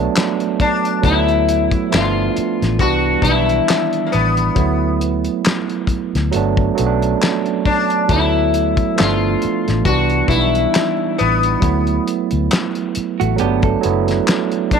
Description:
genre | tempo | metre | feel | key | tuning
R&B, neo-soul | 68 BPM | 4/4 | swing 55% on 16ths | D major | A4 = 439 Hz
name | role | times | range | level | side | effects
overdriven tine electric piano | accompaniment | 0.0-14.8 s | Eb3 to A4 | -19 LUFS | right 10 dB | none
vintage muted fingered electric bass | bass | 0.0-14.2 s | F#1 to D2 | -19 LUFS | left 2 dB | none
cloth-damped thuddy drum kit | drums | 0.2-14.8 s | handclaps, hi-hat, kick drum, snare drum | -20 LUFS | left 2 dB | none
sitar | melody | 0.6-14.8 s | Bb3 to F#4 | -18 LUFS | left 6 dB | slapback echo
hollow-body jazz guitar | second line | 13.2-14.8 s | A3 to A4 | -23 LUFS | right 12 dB | none
room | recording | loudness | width
moderate spring reverb, RT60 2.3 s | 1960s-style stereo with parts hard left and right | -14 LUFS | side -6 dB against mid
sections
0.0-14.8 A section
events
none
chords
0.0 Gmaj9 (rootless); 1.0 D69; 1.9 G9; 2.8 Cmaj9; 4.6 D69; 6.3 Gmaj9; 8.1 D69; 9.0 G9; 9.9 Cmaj9; 11.6 D69; 13.4 Gmaj9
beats
0.15 | 1.03 1.92 2.80 3.68 | 4.56 5.44 6.33 7.21 | 8.09 8.97 9.86 10.74 | 11.62 12.50 13.38 14.27

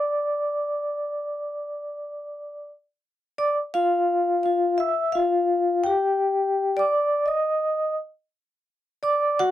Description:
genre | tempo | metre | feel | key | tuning
hip hop | 85 BPM | 4/4 | swing 63% on 16ths | D minor | A4 = 439 Hz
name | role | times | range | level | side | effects
vibraphone with medium mallets | solo | 0.0-9.5 s | F4 to E6 | -22 LUFS | left 1 dB | none
room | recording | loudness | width
little or no reverb | dry, close 1970s-style studio recording | -21 LUFS | side -12 dB against mid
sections
0.0-3.4 A section; 3.4-9.5 B section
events
vibraphone solo 0.0-3.4, 3.4-9.5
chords
0.0 N.C.; 3.4 Dmadd9 (rootless); 6.2 Ebmaj7/G; 7.6 N.C.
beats
| 0.56 1.27 1.97 2.68 | 3.38 4.09 4.80 5.50 | 6.21 6.91 7.62 8.32 | 9.03

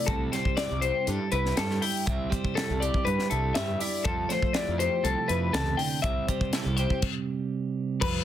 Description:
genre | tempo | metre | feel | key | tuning
math rock and midwest emo | 121 BPM | 4/4 | straight | C major | A4 = 441 Hz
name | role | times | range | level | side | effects
twelve-string electric guitar | accompaniment | 0.0-8.2 s | G2 to G4 | -32 LUFS | right 7 dB | none
twelve-string electric guitar | arpeggios | 0.0-8.2 s | A4 to G5 | -29 LUFS | left 4 dB | plate reverb
fuzz fingered electric bass | bass | 0.1-8.2 s | C2 to G2 | -31 LUFS | equal | overdrive
crisp fusion drum kit | drums | 0.1-8.1 s | crash cymbal, hi-hat, kick drum, snare drum | -30 LUFS | equal | none
room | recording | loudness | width
light reverb | dense, heavily limited modern master | -25 LUFS | side -11 dB against mid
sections
0.0-8.0 A section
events
stop 7.0-8.0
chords
0.1 C69; 4.1 Fmaj9; 6.0 C6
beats
| 0.08 0.58 1.08 1.57 | 2.07 2.57 3.06 3.56 | 4.06 4.55 5.05 5.54 | 6.04 6.53 7.03 7.52 | 8.01

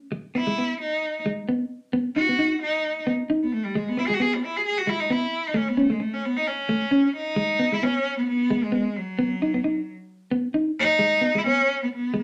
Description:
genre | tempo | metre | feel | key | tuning
highlife | 132 BPM | 4/4 | swing 55% on 16ths | unclear | A4 = 440 Hz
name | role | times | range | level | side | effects
clean electric guitar | accompaniment | 0.1-12.2 s | G#3 to D#4 | -26 LUFS | equal | none
rich cello | melody | 0.4-12.2 s | F#3 to G#4 | -26 LUFS | equal | none
room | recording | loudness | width
wet small room reverb, RT60 0.5 s | none | -24 LUFS | mono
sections
0.0-7.4 A section; 7.4-12.2 B section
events
cello solo 0.0-7.4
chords
0.1 E; 1.9 B; 3.7 G#m; 5.6 A; 7.4 F#sus4 (rootless); 9.2 B; 11.0 F#sus4 (rootless)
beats
| 0.13 0.58 1.03 1.49 | 1.94 2.39 2.84 3.30 | 3.75 4.20 4.65 5.11 | 5.56 6.01 6.47 6.92 | 7.37 7.83 8.28 8.73 | 9.19 9.64 10.09 10.55 | 11.00 11.46 11.91

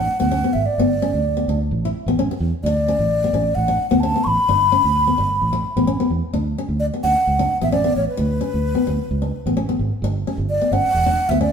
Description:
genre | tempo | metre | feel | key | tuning
highlife guitar band | 130 BPM | 4/4 | straight | D major | A4 = 443 Hz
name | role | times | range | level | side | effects
mellow hollow wooden flute | melody | 0.0-11.5 s | B4 to C#6 | -19 LUFS | equal | none
nylon-string guitar | accompaniment | 0.0-11.5 s | B3 to E4 | -23 LUFS | left 3 dB | none
fingered electric bass | bass | 0.0-11.5 s | E1 to E2 | -22 LUFS | right 1 dB | none
room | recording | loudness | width
wet stone room reverb, RT60 1.2 s | band playing live in one room | -17 LUFS | side -7 dB against mid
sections
0.0-6.3 A section; 6.3-11.5 B section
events
none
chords
0.0 D5; 0.8 G; 1.7 A5; 2.6 D5; 4.5 G; 5.4 A5; 6.3 D5; 10.0 G5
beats
0.32 | 0.78 1.25 1.71 2.17 | 2.63 3.10 3.56 4.02 | 4.49 4.95 5.41 5.87 | 6.33 6.80 7.26 7.72 | 8.18 8.64 9.11 9.57 | 10.03 10.49 10.95 11.41

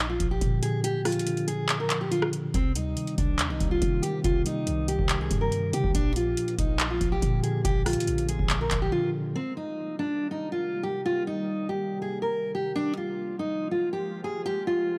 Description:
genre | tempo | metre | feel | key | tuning
hip hop, trap | 141 BPM | 4/4 | half-time | C minor | A4 = 439 Hz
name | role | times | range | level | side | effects
fingerpicked steel-string acoustic guitar | melody | 0.0-15.0 s | C4 to Bb4 | -31 LUFS | equal | none
mellow tine electric piano | accompaniment | 0.0-9.4 s | Bb2 to G3 | -33 LUFS | equal | none
clean 808-style bass | bass | 0.0-8.9 s | Bb1 to F3 | -33 LUFS | equal | none
booming analog drum machine | drums | 0.2-8.9 s | handclaps, hi-hat, kick drum, rim click | -30 LUFS | equal | none
glassy FM pad | sustained chords | 3.0-15.0 s | C3 to G4 | -41 LUFS | equal | ensemble chorus, built-in reverb
room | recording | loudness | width
little or no reverb | dry, gritty hardware recording | -27 LUFS | mono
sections
0.0-9.4 A section; 9.4-15.0 B section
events
kick muted 0.8-2.5; drums muted 8.9-9.4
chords
0.0 Bb; 2.5 Cm7; 5.9 Bb7; 9.4 Cm7; 12.8 Bb5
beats
0.41 | 0.84 1.27 1.69 2.12 | 2.54 2.97 3.39 3.82 | 4.25 4.67 5.10 5.52 | 5.95 6.37 6.80 7.22 | 7.65 8.07 8.50 8.93 | 9.35 9.78 10.20 10.63 | 11.05 11.48 11.90 12.33 | 12.76 13.18 13.61 14.03 | 14.46 14.88

